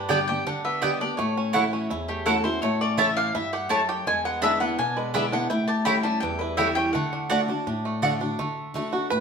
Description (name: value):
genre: bluegrass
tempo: 166 BPM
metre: 4/4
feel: straight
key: D major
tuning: A4 = 440 Hz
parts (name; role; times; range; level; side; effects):
- bluegrass banjo; melody; 0.0-9.2 s; E3 to B4; -30 LUFS; right 4 dB; none
- mandolin; melody; 0.0-8.0 s; G4 to B5; -27 LUFS; left 3 dB; none
- picked steel-string acoustic guitar; accompaniment; 0.0-9.2 s; E2 to G4; -28 LUFS; left 2 dB; none
- mandolin; stabs; 0.1-8.1 s; A3 to B5; -25 LUFS; right 3 dB; none
room: wet studio reverb, RT60 0.8 s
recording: band playing live in one room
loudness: -22 LUFS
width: side -6 dB against mid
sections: 0.0-8.4 A section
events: none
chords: 0.0 G; 1.2 A6; 2.6 A; 4.1 E7; 5.5 A7; 6.9 D